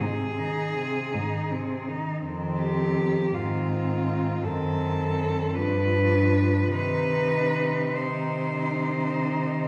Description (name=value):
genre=classical, lyrical piece for cello ensemble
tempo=48-56 BPM (dotted quarters)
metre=12/8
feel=rubato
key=C minor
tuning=A4 = 440 Hz
part: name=clear cello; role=melody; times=0.0-9.7 s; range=F4 to C5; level=-31 LUFS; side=equal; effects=none
part: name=warm cello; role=second line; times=0.0-9.7 s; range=C4 to Eb4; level=-34 LUFS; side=equal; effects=none
part: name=rich cello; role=accompaniment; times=0.0-9.7 s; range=C3 to F3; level=-33 LUFS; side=equal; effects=none
part: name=clear cello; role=bass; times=0.0-9.7 s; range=F2 to C3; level=-31 LUFS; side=equal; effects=none
room=wet recital hall reverb, RT60 1.3 s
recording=heard from further back in the room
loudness=-26 LUFS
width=mono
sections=0.0-9.7 A section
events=none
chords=0.0 Ab; 2.2 Fm7; 4.4 F#dim7; 5.6 G7; 6.7 Cm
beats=0.01 1.15 | 2.24 3.34 4.43 5.55 | 6.73 7.94 9.16